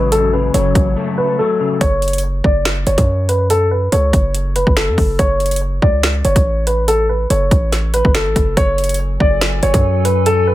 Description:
hip hop, drill; 142 BPM; 4/4; half-time; F# minor; A4 = 440 Hz
dark concert grand piano; melody; 0.0-10.5 s; A4 to D5; -17 LUFS; equal; low-pass filter, digital delay
electric guitar at the edge of break-up; accompaniment; 0.0-1.8 s; F#2 to A3; -19 LUFS; left 5 dB; ensemble chorus, low-pass filter
hard-hitting 808-style bass; bass; 0.0-10.5 s; F#1 to F#2; -17 LUFS; equal
drill drum kit; drums; 0.1-10.4 s; finger snaps, hi-hat, kick drum, snare drum; -16 LUFS; equal
warbly tape-like pad; sustained chords; 9.1-10.5 s; F#3 to G#5; -21 LUFS; left 1 dB; chorus, built-in reverb
light reverb; -13 LUFS; side -15 dB against mid
0.0-10.5 A section
break 1.0-1.8
0.0 F#madd9; 1.8 F#m; 8.6 F#madd9
| 0.12 0.54 0.96 1.39 | 1.81 2.23 2.65 3.08 | 3.50 3.92 4.34 4.77 | 5.19 5.61 6.04 6.46 | 6.88 7.30 7.72 8.15 | 8.57 8.99 9.42 9.84 | 10.26

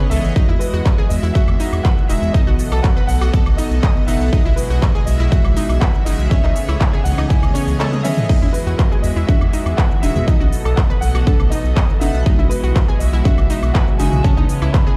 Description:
progressive house; 121 BPM; 4/4; straight; E major; A4 = 440 Hz
clear concert grand piano; melody; 0.0-15.0 s; B4 to B5; -30 LUFS; equal; delay
filtered supersaw swell; sustained chords; 0.0-15.0 s; C#3 to B4; -32 LUFS; equal; sidechain pumping
analog pluck; arpeggios; 0.0-14.9 s; C#4 to D#5; -30 LUFS; equal; chorus, sidechain pumping, delay
chorused polysynth; stabs; 0.0-15.0 s; B2 to F#5; -26 LUFS; equal; sidechain pumping
round analog bass; bass; 0.1-14.7 s; E1 to E2; -20 LUFS; equal; tube saturation, sidechain pumping
big-room dance drum kit; drums; 0.1-15.0 s; crash cymbal, handclaps, hi-hat, shaker, toms, woodblock; -29 LUFS; equal; overdrive
electronic kick drum; drums; 0.4-14.8 s; -17 LUFS; equal; overdrive
electronic congas, toms and bongos; percussion; 8.4-14.5 s; -27 LUFS; equal; sidechain pumping on perc, sidechain pumping on toms
digital ambience; played on a big sound system in a bare room, stone room reverb; -16 LUFS; mono
0.0-15.0 A section
drum fill 7.8-8.3
0.4 Emaj9; 2.3 B7; 4.3 Emaj9/B; 6.3 Amaj9#11/C#; 8.3 Emaj9; 10.3 B7; 12.3 Emaj9/B; 14.2 Amaj9#11/C#
| 0.36 0.86 1.35 1.85 | 2.34 2.84 3.33 3.83 | 4.33 4.82 5.32 5.82 | 6.31 6.81 7.30 7.80 | 8.29 8.79 9.29 9.78 | 10.28 10.77 11.27 11.77 | 12.26 12.76 13.25 13.75 | 14.24 14.74

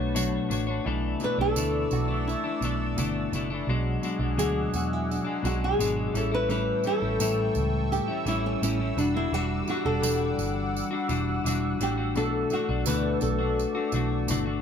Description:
indie pop, bedroom pop; 85 BPM; 4/4; straight; B minor; A4 = 439 Hz
flamenco guitar; melody; 0.0-14.2 s; C#4 to B4; -29 LUFS; equal
semi-hollow electric guitar; accompaniment; 0.0-14.6 s; A2 to C#5; -29 LUFS; left 3 dB; vibrato effect
phased analog pad; sustained chords; 0.0-14.6 s; G3 to E6; -35 LUFS; equal; phaser, chorus
vintage muted picked electric bass; bass; 0.0-14.6 s; E1 to E2; -30 LUFS; right 2 dB
tambourine; percussion; 0.2-14.4 s; -37 LUFS; right 8 dB
moderate small room ambience, RT60 0.5 s; band playing live in one room; -24 LUFS; side -7 dB against mid
0.9-14.6 A section
nylon-string guitar solo 0.9-14.6
0.0 Bm9; 0.9 Bm11; 3.7 E9/B; 6.2 A7; 9.0 Em9; 12.2 Bm11
0.15 | 0.85 1.56 2.27 2.97 | 3.68 4.38 5.09 5.80 | 6.50 7.21 7.92 8.62 | 9.33 10.04 10.74 11.45 | 12.15 12.86 13.57 14.27

